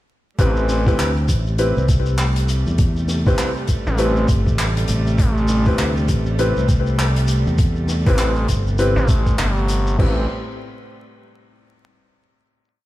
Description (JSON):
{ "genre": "glitch hop", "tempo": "100 BPM", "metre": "4/4", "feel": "swing 60% on 16ths", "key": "A minor", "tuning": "A4 = 439 Hz", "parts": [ { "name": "rich chamber string section", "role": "sustained chords", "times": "0.4-10.3 s", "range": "A2 to C4", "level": "-26 LUFS", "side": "right 1 dB", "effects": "sidechain pumping" }, { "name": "clear concert grand piano", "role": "stabs", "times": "0.4-10.2 s", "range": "C4 to B4", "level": "-24 LUFS", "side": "left 1 dB", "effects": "sidechain pumping, ping-pong delay" }, { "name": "gritty driven synth bass", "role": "bass", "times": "0.4-10.3 s", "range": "G1 to A1", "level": "-19 LUFS", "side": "equal", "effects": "none" }, { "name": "electronic kick drum", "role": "drums", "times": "0.4-10.1 s", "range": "none", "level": "-18 LUFS", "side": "equal", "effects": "none" }, { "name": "open jazz drum kit", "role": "drums", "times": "0.4-10.1 s", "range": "crash cymbal, handclaps, hi-hat, snare drum", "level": "-28 LUFS", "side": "left 1 dB", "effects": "none" }, { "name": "shekere", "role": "percussion", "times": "0.4-10.0 s", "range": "none", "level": "-35 LUFS", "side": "left 1 dB", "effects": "none" }, { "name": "fingered electric bass", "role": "bass", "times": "1.0-8.9 s", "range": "G1 to E2", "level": "-19 LUFS", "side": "equal", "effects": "none" } ], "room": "light reverb", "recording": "played on a big sound system in a bare room, stone room reverb, vinyl crackle", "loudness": "-16 LUFS", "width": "side -16 dB against mid", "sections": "0.4-10.0 drop; 10.0-12.4 final chord", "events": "drop 0.4-10.0", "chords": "0.4 Am9" }